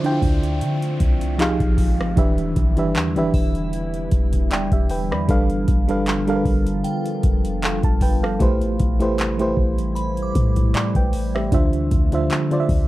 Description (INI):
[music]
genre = contemporary R&B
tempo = 77 BPM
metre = 4/4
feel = swing 54% on 16ths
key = D dorian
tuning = A4 = 440 Hz
[part]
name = FM electric piano with auto-pan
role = accompaniment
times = 0.0-12.9 s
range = D3 to B5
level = -22 LUFS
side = right 1 dB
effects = none
[part]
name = glassy FM pad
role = sustained chords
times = 0.0-12.9 s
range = C3 to F4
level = -29 LUFS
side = equal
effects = ensemble chorus, built-in reverb, sidechain pumping
[part]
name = booming analog drum machine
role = drums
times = 0.0-12.9 s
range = handclaps, hi-hat, kick drum, rim click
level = -20 LUFS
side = equal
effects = none
[part]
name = downlifter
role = sound effects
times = 0.0-5.3 s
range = none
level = -42 LUFS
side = equal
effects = none
[part]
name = glassy synth bell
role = texture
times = 0.0-11.4 s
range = C5 to D6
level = -36 LUFS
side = right 1 dB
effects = chorus, phaser, tape echo
[part]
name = clean 808-style bass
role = bass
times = 0.2-12.9 s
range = E1 to D3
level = -24 LUFS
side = equal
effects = none
[sound]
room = light reverb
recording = dark, warm production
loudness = -17 LUFS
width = side -16 dB against mid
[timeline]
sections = 0.0-12.9 A section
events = FM electric piano fill 4.1-5.3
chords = 0.0 Dm7; 1.4 Fm7; 2.2 Em7; 5.3 G7; 8.4 Am7; 11.5 Dm7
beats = 0.61 1.39 | 2.17 2.95 3.73 4.51 | 5.29 6.07 6.85 7.63 | 8.41 9.19 9.96 10.74 | 11.52 12.30